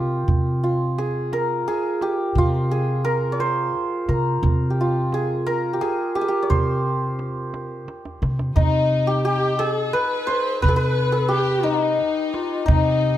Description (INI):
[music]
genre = Persian modal ensemble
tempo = 58 BPM (dotted quarters)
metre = 6/8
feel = straight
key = C dastgah shur, C avaz esfahan from 8.6 s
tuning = A4 = 440 Hz
[part]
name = santur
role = melody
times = 0.0-13.2 s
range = Eb4 to Db5+45c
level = -22 LUFS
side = equal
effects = none
[part]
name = upright bass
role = bass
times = 0.0-13.2 s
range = C3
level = -23 LUFS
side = equal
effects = none
[part]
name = tombak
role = percussion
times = 0.3-13.1 s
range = none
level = -24 LUFS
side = right 2 dB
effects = none
[part]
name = breathy bright low ney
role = second line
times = 8.6-13.2 s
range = Eb4 to C5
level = -27 LUFS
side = left 6 dB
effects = none
[part]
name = warm studio violin section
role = second line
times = 8.6-13.2 s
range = Eb4 to B4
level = -29 LUFS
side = left 2 dB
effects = none
[sound]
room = little or no reverb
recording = close, detailed microphones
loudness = -19 LUFS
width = side -12 dB against mid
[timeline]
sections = 0.0-8.6 A section; 8.6-13.2 B section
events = drum fill 7.9-8.6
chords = none